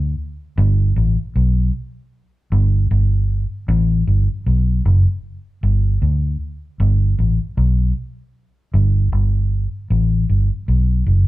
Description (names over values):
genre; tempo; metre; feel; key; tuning
reggae; 77 BPM; 4/4; swing 57% on 16ths; G major; A4 = 440 Hz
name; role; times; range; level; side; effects
vintage muted fingered electric bass; solo; 0.0-11.3 s; F#1 to D2; -15 LUFS; equal; none
room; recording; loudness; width
moderate studio reverb, RT60 0.8 s; band playing live in one room; -15 LUFS; side -16 dB against mid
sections
0.0-5.2 A section; 5.2-11.3 B section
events
none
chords
none